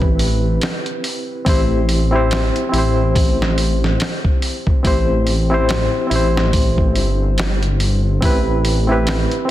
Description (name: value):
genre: trip hop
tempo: 71 BPM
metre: 4/4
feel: swing 58% on 16ths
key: unclear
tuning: A4 = 439 Hz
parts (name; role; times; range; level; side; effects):
- barky reed electric piano; accompaniment; 0.0-9.5 s; C4 to C5; -20 LUFS; left 1 dB; tremolo, tape echo
- dark detuned saw bass; bass; 0.0-9.3 s; G1 to A1; -17 LUFS; equal; tube saturation
- dusty soul sampler-style drum kit; drums; 0.0-9.5 s; hi-hat, kick drum, snare drum; -19 LUFS; equal; none
room: light reverb, digital ambience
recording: dense, heavily limited modern master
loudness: -14 LUFS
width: side -14 dB against mid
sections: 0.0-9.5 A section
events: none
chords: 0.0 Am7; 1.5 C/A; 8.2 Am7